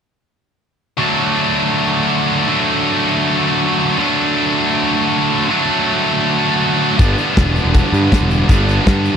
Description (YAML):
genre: indie rock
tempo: 159 BPM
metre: 4/4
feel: straight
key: D major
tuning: A4 = 440 Hz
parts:
  - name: heavy high-gain guitar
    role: riff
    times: 1.0-9.2 s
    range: G2 to D4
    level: -14 LUFS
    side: equal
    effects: distortion
  - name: fuzz picked electric bass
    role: bass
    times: 7.0-9.1 s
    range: E1 to G2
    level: -16 LUFS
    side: equal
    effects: overdrive
  - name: loose indie drum kit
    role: drums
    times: 7.0-9.1 s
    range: hi-hat, kick drum, snare drum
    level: -14 LUFS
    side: equal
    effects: none
room: small room ambience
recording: dry, close 1970s-style studio recording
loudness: -13 LUFS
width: side -7 dB against mid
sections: 1.0-9.2 A section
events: none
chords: 1.0 D; 7.0 G